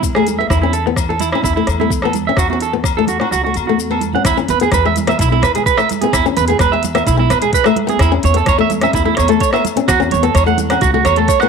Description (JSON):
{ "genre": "highlife guitar band", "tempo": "128 BPM", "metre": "4/4", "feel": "straight", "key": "E major", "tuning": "A4 = 438 Hz", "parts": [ { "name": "flamenco guitar", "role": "accompaniment", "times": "0.0-11.5 s", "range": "G#3 to C#4", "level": "-19 LUFS", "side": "left 13 dB", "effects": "none" }, { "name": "upright bass", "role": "bass", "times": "0.0-11.3 s", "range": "B1 to E2", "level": "-19 LUFS", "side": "left 1 dB", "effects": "none" }, { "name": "organic electronic drum kit", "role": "drums", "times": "0.0-11.5 s", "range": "hi-hat, kick drum, rim click", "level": "-20 LUFS", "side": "left 1 dB", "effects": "none" }, { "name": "maracas", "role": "percussion", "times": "0.0-11.5 s", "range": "none", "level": "-28 LUFS", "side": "left 18 dB", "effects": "none" }, { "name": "electric guitar at the edge of break-up", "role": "arpeggios", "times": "0.1-11.5 s", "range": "E4 to F#5", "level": "-16 LUFS", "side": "right 10 dB", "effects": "slapback echo" }, { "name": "agogo bells", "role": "percussion", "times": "0.2-11.5 s", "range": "none", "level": "-27 LUFS", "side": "left 14 dB", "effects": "none" }, { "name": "congas", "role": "percussion", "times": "0.3-11.2 s", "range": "none", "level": "-24 LUFS", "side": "right 12 dB", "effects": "none" } ], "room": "light reverb", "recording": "1960s-style stereo with parts hard left and right", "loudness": "-12 LUFS", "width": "side -5 dB against mid", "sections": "0.0-4.3 A section; 4.3-11.5 B section", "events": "kick and snare drop out 3.3-4.3; drum fill 3.7-4.3", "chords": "0.0 E; 0.5 A/E; 2.4 F#m/E; 4.3 E; 8.0 A/E; 9.9 F#m/E" }